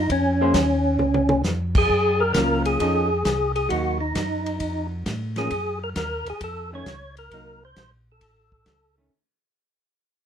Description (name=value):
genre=soul jazz organ trio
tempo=133 BPM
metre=4/4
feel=swing 68% on 8ths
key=Bb minor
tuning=A4 = 440 Hz
part: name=percussive tonewheel organ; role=melody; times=0.0-9.0 s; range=Db4 to Db5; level=-23 LUFS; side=equal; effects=slow rotary speaker, overdrive, chorus vibrato
part: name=mellow tonewheel organ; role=bass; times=0.0-9.1 s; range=A1 to A2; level=-28 LUFS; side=equal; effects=slow rotary speaker
part: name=warm soul drum kit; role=drums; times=0.1-8.8 s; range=crash cymbal, hi-hat, kick drum, ride cymbal, snare drum, toms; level=-26 LUFS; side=equal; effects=none
part: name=vintage hollow-body jazz guitar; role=accompaniment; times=0.4-9.1 s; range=Eb3 to C5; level=-26 LUFS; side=equal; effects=none
room=moderate small room reverb, RT60 0.5 s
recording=none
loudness=-20 LUFS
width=side -8 dB against mid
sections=0.0-1.9 A section; 1.9-9.1 B section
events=drum fill 1.0-1.4; fade-out 1.9-9.1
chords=0.0 Bbm (rootless); 1.9 Gbmaj7; 2.8 F7b13; 3.7 Ebm; 4.6 F; 5.5 Ebmadd11; 6.4 F7b13; 7.3 Cm7b5; 8.2 A